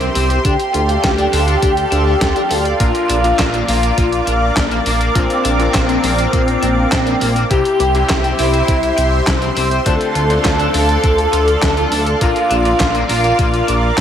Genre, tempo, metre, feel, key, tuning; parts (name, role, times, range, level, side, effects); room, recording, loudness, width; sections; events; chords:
synthwave; 102 BPM; 4/4; straight; Bb lydian; A4 = 438 Hz
lush unison pad; sustained chords; 0.0-14.0 s; G4 to D6; -20 LUFS; equal; chorus, phaser, sidechain pumping, shimmer reverb
overdriven electric guitar; riff; 0.0-14.0 s; Bb3 to D5; -25 LUFS; left 4 dB; wide subtle chorus, digital delay, shimmer reverb
chorused synth bass; bass; 0.0-14.0 s; Bb1 to D2; -18 LUFS; equal; sidechain pumping
clean 12-bit digital drum machine; drums; 0.0-14.0 s; handclaps, hi-hat, snare drum; -21 LUFS; equal; gated reverb
expressive synth lead; melody; 0.4-13.9 s; C4 to A4; -19 LUFS; equal; ensemble chorus, cassette tape, digital delay, shimmer reverb
electronic kick drum; drums; 0.4-14.0 s; -19 LUFS; equal
airy dreamy lead; second line; 0.5-13.9 s; C4 to A4; -23 LUFS; left 2 dB; chorus, tape echo, shimmer reverb
bright electric grand piano; stabs; 2.8-14.0 s; Bb2 to C5; -24 LUFS; left 5 dB; shimmer reverb
light reverb, digital ambience; -12 LUFS; side -9 dB against mid
0.0-14.0 A section
0.4 Dm7; 2.8 Bb; 7.5 C; 9.9 Dm7; 12.2 Bb